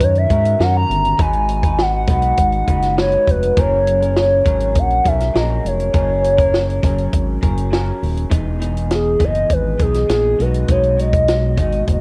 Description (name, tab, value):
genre	indie pop, bedroom pop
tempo	101 BPM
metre	4/4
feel	straight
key	unclear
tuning	A4 = 440 Hz
part	hollow clarinet-like synth lead	melody	0.0-12.0 s	G#4 to A#5	-20 LUFS	equal	analog chorus, cassette tape, analog delay
part	electric guitar at the edge of break-up	accompaniment	0.0-12.0 s	B2 to B4	-27 LUFS	equal	subtle chorus, vibrato effect, cassette tape
part	fingered electric bass	bass	0.0-12.0 s	D#1 to G#2	-22 LUFS	equal	none
part	compact cocktail drum kit	drums	0.0-12.0 s	hi-hat, kick drum, snare drum	-22 LUFS	equal	none
room	light reverb, small room ambience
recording	home recording on cassette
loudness	-16 LUFS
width	mono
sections	0.0-8.3 A section; 8.3-12.0 B section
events	soft synth lead solo 8.3-12.0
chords	0.0 D#m7; 1.2 G#m7; 3.6 F#add9; 8.3 Emaj7; 10.4 B6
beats	0.01 0.60 | 1.19 1.79 2.38 2.98 | 3.57 4.16 4.76 5.35 | 5.94 6.54 7.13 7.73 | 8.32 8.91 9.51 10.10 | 10.69 11.29 11.88